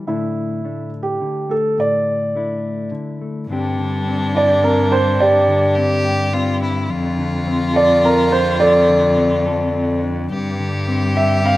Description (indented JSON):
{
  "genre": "acoustic folk-pop ballad",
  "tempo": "106 BPM",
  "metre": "3/4",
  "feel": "straight",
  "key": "unclear",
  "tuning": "A4 = 438 Hz",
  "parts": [
    { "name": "mellow electric guitar", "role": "accompaniment", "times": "0.0-11.6 s", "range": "F2 to A4", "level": "-22 LUFS", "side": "left 3 dB", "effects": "none" },
    { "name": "dark baby grand piano", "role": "melody", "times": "0.1-11.6 s", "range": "E4 to F5", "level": "-16 LUFS", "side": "right 1 dB", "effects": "none" },
    { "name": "rich violin", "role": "second line", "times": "3.5-11.6 s", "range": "D4 to G4", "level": "-24 LUFS", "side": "left 1 dB", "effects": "none" },
    { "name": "warm cello", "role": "bass", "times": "3.5-11.6 s", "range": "F2 to G2", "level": "-20 LUFS", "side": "equal", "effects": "none" }
  ],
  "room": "light reverb, studio reverb",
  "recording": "rough home demo mix",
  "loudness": "-15 LUFS",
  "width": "side -16 dB against mid",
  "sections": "0.0-3.5 A section; 3.5-11.6 B section",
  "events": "none",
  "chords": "0.1 Asus4; 3.5 Gsus4; 6.9 Dm7/F; 10.3 Gsus4",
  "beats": "| 0.07 0.64 1.21 | 1.78 2.35 2.92 | 3.49 4.06 4.63 | 5.20 5.76 6.33 | 6.89 7.46 8.03 | 8.60 9.16 9.73 | 10.30 10.87 11.43"
}